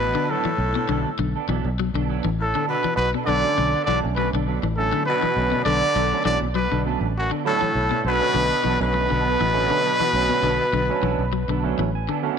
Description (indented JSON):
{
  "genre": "afrobeat",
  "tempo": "100 BPM",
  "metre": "4/4",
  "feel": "swing 53% on 16ths",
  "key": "B minor",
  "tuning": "A4 = 440 Hz",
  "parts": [
    { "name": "breathy trumpet", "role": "melody", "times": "0.0-11.9 s", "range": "F#4 to D5", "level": "-23 LUFS", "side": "equal", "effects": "tape echo" },
    { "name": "raspy baritone saxophone", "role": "second line", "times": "0.0-11.9 s", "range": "F#2 to D3", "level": "-30 LUFS", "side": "left 12 dB", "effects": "none" },
    { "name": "warm trombone", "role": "second line", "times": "0.0-11.9 s", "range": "F#2 to D3", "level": "-30 LUFS", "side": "right 12 dB", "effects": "tape echo" },
    { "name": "electric guitar at the edge of break-up", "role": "arpeggios", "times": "0.0-12.3 s", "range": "B2 to F#3", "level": "-28 LUFS", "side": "left 11 dB", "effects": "spring reverb" },
    { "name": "fingered electric bass", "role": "bass", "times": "0.0-12.1 s", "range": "A1 to B1", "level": "-25 LUFS", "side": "equal", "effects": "none" },
    { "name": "clean electric guitar", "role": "stabs", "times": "0.2-12.4 s", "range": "F#3 to A4", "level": "-30 LUFS", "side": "right 14 dB", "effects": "ensemble chorus" },
    { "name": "barky tine electric piano", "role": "accompaniment", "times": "3.4-12.4 s", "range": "D3 to G#5", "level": "-30 LUFS", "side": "right 14 dB", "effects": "overdrive" }
  ],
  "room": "light reverb, studio reverb",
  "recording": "1960s-style stereo with parts hard left and right",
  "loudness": "-19 LUFS",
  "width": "side -7 dB against mid",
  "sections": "0.0-12.4 A section",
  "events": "tine electric piano fill 11.6-12.4",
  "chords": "0.0 Bm9",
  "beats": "0.00 | 0.59 1.19 1.79 2.38 | 2.98 3.58 4.17 4.77 | 5.37 5.96 6.56 7.16 | 7.75 8.35 8.95 9.55 | 10.14 10.74 11.34 11.94"
}